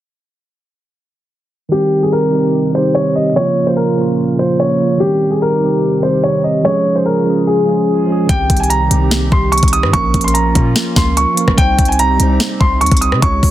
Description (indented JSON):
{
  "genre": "hip hop, trap",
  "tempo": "146 BPM",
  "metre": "4/4",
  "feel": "half-time",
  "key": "C phrygian",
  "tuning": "A4 = 440 Hz",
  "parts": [
    { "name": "dark grand piano", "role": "melody", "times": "1.7-13.5 s", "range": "G4 to Eb6", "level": "-15 LUFS", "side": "left 1 dB", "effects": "tape echo" },
    { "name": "mellow tine electric piano", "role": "accompaniment", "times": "1.7-13.5 s", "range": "Db3 to Db5", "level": "-16 LUFS", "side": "right 3 dB", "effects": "none" },
    { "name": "hollow soft pad", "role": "sustained chords", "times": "1.7-13.5 s", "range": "Bb2 to Ab4", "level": "-23 LUFS", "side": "left 1 dB", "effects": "chorus" },
    { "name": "warm 808-style bass", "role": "bass", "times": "8.3-13.5 s", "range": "Bb1 to C3", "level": "-16 LUFS", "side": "left 1 dB", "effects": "none" },
    { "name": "trap drum kit", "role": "drums", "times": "8.3-13.5 s", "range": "hi-hat, kick drum, rim click, snare drum", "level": "-15 LUFS", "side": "equal", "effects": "overdrive" }
  ],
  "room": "light reverb",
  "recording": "dense, heavily limited modern master, low-pass filter",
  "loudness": "-11 LUFS",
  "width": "side -13 dB against mid",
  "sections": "1.7-8.3 A section; 8.3-13.5 B section",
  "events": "filter sweep 1.7-8.3",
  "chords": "1.7 Cm; 3.4 Bbm; 5.0 Cm; 6.6 Db; 8.3 Cm; 9.9 Bbm; 11.6 Cm",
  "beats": "| 1.72 2.13 2.54 2.95 | 3.36 3.77 4.18 4.59 | 5.00 5.42 5.83 6.24 | 6.65 7.06 7.47 7.88 | 8.29 8.70 9.12 9.53 | 9.94 10.35 10.76 11.17 | 11.58 11.99 12.40 12.81 | 13.22"
}